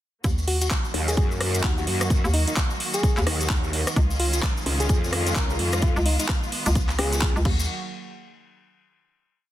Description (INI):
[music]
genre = bass house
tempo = 129 BPM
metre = 4/4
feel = swing 60% on 16ths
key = Eb minor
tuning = A4 = 440 Hz
[part]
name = clear studio string section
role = sustained chords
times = 0.2-7.7 s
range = Eb3 to Gb4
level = -32 LUFS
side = equal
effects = sidechain pumping, low-pass filter
[part]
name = hollow knocking FM bass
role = bass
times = 0.2-7.7 s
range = Db2 to Eb2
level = -23 LUFS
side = equal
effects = overdrive, sidechain pumping
[part]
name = electronic kick drum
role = drums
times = 0.2-7.6 s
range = none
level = -24 LUFS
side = equal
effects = studio reverb
[part]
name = garage drum kit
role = drums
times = 0.2-7.6 s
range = crash cymbal, handclaps, hi-hat, rim click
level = -28 LUFS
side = equal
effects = studio reverb
[part]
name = maracas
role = percussion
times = 0.2-7.7 s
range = none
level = -34 LUFS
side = left 2 dB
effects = none
[part]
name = soft struck synth lead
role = melody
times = 0.5-7.4 s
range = Eb4 to Bb4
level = -32 LUFS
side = left 1 dB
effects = chorus, vintage 12-bit sampler grit, ping-pong delay
[part]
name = growl bass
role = bass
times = 0.9-7.3 s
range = Db2 to Gb2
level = -25 LUFS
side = equal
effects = chorus, tube saturation, sidechain pumping
[sound]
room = little or no reverb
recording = dense, heavily limited modern master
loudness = -21 LUFS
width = side -13 dB against mid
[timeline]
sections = 0.2-7.7 drop; 7.7-9.5 final hit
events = drop 0.2-7.7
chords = 0.2 Ebm; 4.0 Dbadd9; 7.5 Ebm; 7.7 N.C.